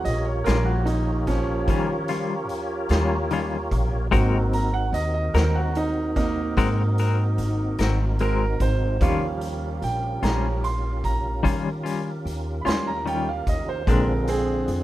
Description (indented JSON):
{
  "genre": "slow blues",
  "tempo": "49 BPM (dotted quarters)",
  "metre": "12/8",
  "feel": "straight",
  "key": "Eb mixolydian",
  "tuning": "A4 = 441 Hz",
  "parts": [
    { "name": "bright concert grand piano", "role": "accompaniment", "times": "0.0-14.8 s", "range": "D3 to C6", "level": "-27 LUFS", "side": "right 4 dB", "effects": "none" },
    { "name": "tonewheel organ", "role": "sustained chords", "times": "0.0-14.8 s", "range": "C4 to Db5", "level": "-31 LUFS", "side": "equal", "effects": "chorus vibrato, slow rotary speaker" },
    { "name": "upright bass", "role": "bass", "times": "0.1-14.8 s", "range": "Ab1 to Eb3", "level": "-25 LUFS", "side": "equal", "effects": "none" },
    { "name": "raw garage drum kit", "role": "drums", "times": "0.1-14.8 s", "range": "hi-hat, kick drum, snare drum", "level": "-29 LUFS", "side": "equal", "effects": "none" },
    { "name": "semi-hollow electric guitar", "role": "accompaniment", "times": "0.5-14.1 s", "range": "Bb2 to Bb4", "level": "-26 LUFS", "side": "left 6 dB", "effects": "tremolo" }
  ],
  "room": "light reverb",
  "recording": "rough home demo mix",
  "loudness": "-21 LUFS",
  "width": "side -15 dB against mid",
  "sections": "0.0-14.8 A section",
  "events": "grand piano solo 0.0-14.8",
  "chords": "0.0 Eb9; 4.1 Ab9; 9.0 Eb9; 13.9 Bb9",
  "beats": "0.46 1.68 2.90 | 4.13 5.35 6.57 7.79 | 9.01 10.23 11.44 12.66 | 13.88"
}